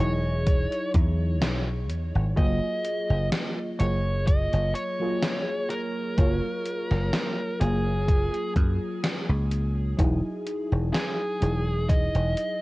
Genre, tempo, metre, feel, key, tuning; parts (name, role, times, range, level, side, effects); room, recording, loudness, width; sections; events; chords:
vaporwave; 63 BPM; 4/4; swing 53% on 16ths; F# major; A4 = 440 Hz
fuzz lead guitar; melody; 0.0-12.6 s; G#4 to D#5; -31 LUFS; right 1 dB; distortion, tape echo
mellow FM electric piano; accompaniment; 0.0-12.6 s; F#3 to C#5; -31 LUFS; left 1 dB; analog chorus
dry thumbed slap bass; bass; 0.0-12.3 s; E1 to F#2; -25 LUFS; equal
electronic kick drum; drums; 0.5-12.1 s; -22 LUFS; equal; overdrive, vintage 12-bit sampler grit
gated 80s digital drum machine; drums; 0.5-12.6 s; hi-hat, snare drum; -30 LUFS; equal; gated reverb, gated reverb snare, overdrive, vintage 12-bit sampler grit
little or no reverb; worn, warbling old tape, cassette tape, warbly pitch drift; -23 LUFS; side -20 dB against mid
0.0-12.6 A section
0.0 Emaj9; 2.4 F#maj9; 10.0 Emaj9